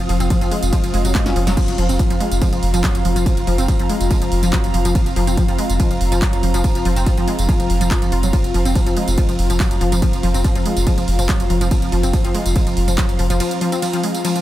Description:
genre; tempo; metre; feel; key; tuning
driving peak-time techno; 142 BPM; 4/4; straight; unclear; A4 = 442 Hz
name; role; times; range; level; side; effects
saturated sub bass; bass; 0.0-13.4 s; F1; -20 LUFS; equal; tube saturation, sidechain pumping, low-pass filter
airy breathy pad; texture; 0.0-14.4 s; C4 to Eb6; -23 LUFS; equal; chorus, sidechain pumping
resonant blip pluck; riff; 0.1-14.4 s; F3 to F4; -22 LUFS; left 1 dB; chorus, overdrive, sidechain pumping, diffuse ambient delay
techno drum kit; drums; 0.1-14.4 s; crash cymbal, handclaps, hi-hat, ride cymbal, snare drum, tambourine; -26 LUFS; right 2 dB; none
electronic kick drum; drums; 0.3-13.1 s; none; -18 LUFS; equal; none
room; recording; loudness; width
light reverb; none; -15 LUFS; side -14 dB against mid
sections
0.0-14.4 A section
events
drum fill 1.1-1.6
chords
0.0 F5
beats
0.30 0.73 1.15 | 1.57 1.99 2.42 2.84 | 3.26 3.68 4.11 4.53 | 4.95 5.37 5.80 6.22 | 6.64 7.07 7.49 7.91 | 8.33 8.76 9.18 9.60 | 10.02 10.45 10.87 11.29 | 11.71 12.13 12.56 12.98 | 13.40 13.82 14.25

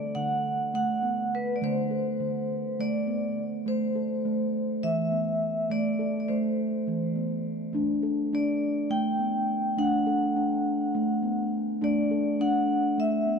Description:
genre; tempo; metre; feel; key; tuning
world meditative, meditative tuned percussion; 206 BPM (eighths); 7/8; straight; unclear; A4 = 437 Hz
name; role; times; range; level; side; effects
vibraphone with hard mallets; melody; 0.0-13.4 s; B4 to G5; -30 LUFS; left 1 dB; none
steel tongue drum; arpeggios; 0.0-13.4 s; D3 to A4; -27 LUFS; equal; ping-pong delay
room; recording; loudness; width
wet cathedral reverb, RT60 5.4 s; cassette tape; -25 LUFS; side -6 dB against mid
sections
0.0-13.4 A section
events
none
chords
0.0 D; 3.7 Am; 7.7 D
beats
0.15 0.44 0.73 1.03 1.32 | 1.61 1.91 2.20 2.49 2.78 3.07 3.37 | 3.66 3.95 4.24 4.53 4.82 5.12 5.41 | 5.70 5.99 6.28 6.58 6.87 7.16 7.45 | 7.74 8.03 8.32 8.62 8.91 9.20 9.49 | 9.78 10.07 10.37 10.66 10.95 11.24 11.53 | 11.82 12.11 12.40 12.69 12.98 13.28

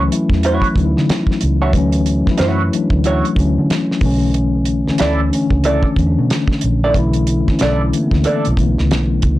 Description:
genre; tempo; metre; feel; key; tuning
R&B, neo-soul; 92 BPM; 4/4; swing 62% on 16ths; unclear; A4 = 439 Hz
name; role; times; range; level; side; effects
mellow tine electric piano; accompaniment; 0.0-9.4 s; D3 to E4; -17 LUFS; left 3 dB; medium stereo tremolo
vintage muted fingered electric bass; bass; 0.0-9.4 s; Bb1 to D3; -17 LUFS; right 1 dB; tube saturation
damped 70s drum kit; drums; 0.1-9.4 s; hi-hat, kick drum, snare drum; -19 LUFS; right 1 dB; none
electric guitar through a small old amp; second line; 0.4-8.5 s; E4 to D5; -18 LUFS; right 3 dB; wah
room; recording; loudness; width
moderate studio ambience, RT60 0.5 s; blown-out, overdriven recording, overdrive; -13 LUFS; side -16 dB against mid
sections
0.0-9.4 A section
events
none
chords
0.0 Dmaj9; 4.0 Bm11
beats
0.43 1.08 | 1.73 2.38 3.04 3.69 | 4.34 4.99 5.64 6.30 | 6.95 7.60 8.25 8.91

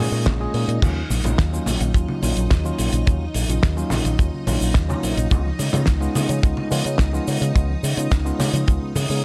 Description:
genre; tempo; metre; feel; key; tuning
nu-disco, nu disco; 107 BPM; 4/4; straight; Eb minor; A4 = 440 Hz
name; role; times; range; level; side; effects
tine electric piano; accompaniment; 0.0-9.2 s; Gb3 to Ab4; -29 LUFS; equal; sidechain pumping, tape echo
string machine, full ensemble; sustained chords; 0.0-9.2 s; D#4 to D#5; -34 LUFS; equal; ensemble chorus, sidechain pumping
fingered electric bass with an envelope filter; bass; 0.0-9.2 s; Bb1 to Db3; -25 LUFS; equal; none
damped 70s drum kit; drums; 0.1-9.2 s; crash cymbal, hi-hat, shaker, snare drum; -29 LUFS; equal; none
kick drum; drums; 0.3-8.8 s; none; -21 LUFS; equal; none
congas; percussion; 0.3-9.1 s; none; -31 LUFS; equal; none
soft round pluck; arpeggios; 0.8-9.2 s; Db3 to Ab4; -35 LUFS; equal; none
room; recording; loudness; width
light reverb, small room ambience; none; -21 LUFS; mono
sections
0.8-9.2 A section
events
drop 0.8-9.2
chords
0.0 Bbm7; 0.8 Ebm7; 5.3 Db7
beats
0.27 | 0.82 1.39 1.95 2.51 | 3.07 3.63 4.19 4.75 | 5.31 5.87 6.43 6.99 | 7.55 8.12 8.68 9.24

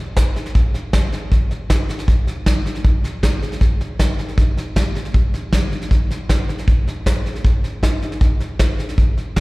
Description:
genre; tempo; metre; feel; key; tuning
country; 157 BPM; 4/4; straight; none; none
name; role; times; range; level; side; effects
soft brush drum kit; drums; 0.2-9.4 s; hi-hat, kick drum, snare drum; -16 LUFS; equal; none
room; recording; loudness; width
light reverb; live gig heard through the venue's PA, recital hall reverb; -16 LUFS; side -23 dB against mid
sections
0.0-1.3 A section; 1.3-9.4 B section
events
none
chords
none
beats
0.17 0.55 0.93 | 1.32 1.70 2.08 2.46 | 2.85 3.23 3.61 4.00 | 4.38 4.76 5.14 5.53 | 5.91 6.29 6.68 7.06 | 7.44 7.83 8.21 8.60 | 8.98 9.36

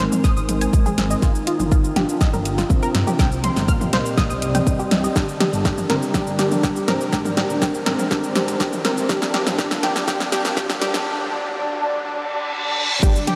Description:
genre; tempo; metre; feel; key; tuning
melodic techno; 122 BPM; 4/4; straight; unclear; A4 = 440 Hz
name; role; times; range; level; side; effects
fat analog lead; melody; 0.0-13.4 s; G3 to Eb4; -28 LUFS; equal; ensemble chorus, sidechain pumping, diffuse ambient delay
dark analog pad; sustained chords; 0.0-11.0 s; G3 to G5; -30 LUFS; equal; chorus, sidechain pumping
tight sequenced synth; arpeggios; 0.0-13.4 s; F4 to F6; -29 LUFS; equal; chorus, phaser, sidechain pumping, analog delay
dark detuned saw bass; bass; 0.0-13.1 s; Eb1 to Ab2; -30 LUFS; equal; sidechain pumping
house drum kit; drums; 0.0-13.4 s; crash cymbal, hi-hat, shaker, snare drum, toms; -26 LUFS; equal; small room ambience, sidechain pumping on perc, sidechain pumping on hats, sidechain pumping on toms, sidechain pumping on cymbals
riser and reverse cymbal; sound effects; 0.2-13.0 s; none; -34 LUFS; equal; none
electronic kick drum; drums; 0.2-13.1 s; none; -21 LUFS; equal; small room ambience
room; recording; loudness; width
wet huge ambient reverb, RT60 7.3 s; dreamy mix soaked in reverb, high-pass filter; -20 LUFS; mono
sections
0.0-13.0 A section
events
build-up 0.0-13.0; drum fill 0.0-11.1; filter sweep on analog synth lead 0.0-13.0; filter sweep 0.0-13.0; reverse cymbal 12.0-13.0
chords
0.0 Ab; 1.2 Ebadd9/G; 3.2 Cm; 5.2 Gm; 7.1 Ab; 9.1 Bb69/G; 11.1 N.C.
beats
0.24 0.73 | 1.23 1.72 2.21 2.70 | 3.19 3.68 4.18 4.67 | 5.16 5.65 6.14 6.63 | 7.13 7.62 8.11 8.60 | 9.09 9.59 10.08 10.57 | 11.06 11.55 12.04 12.54 | 13.03

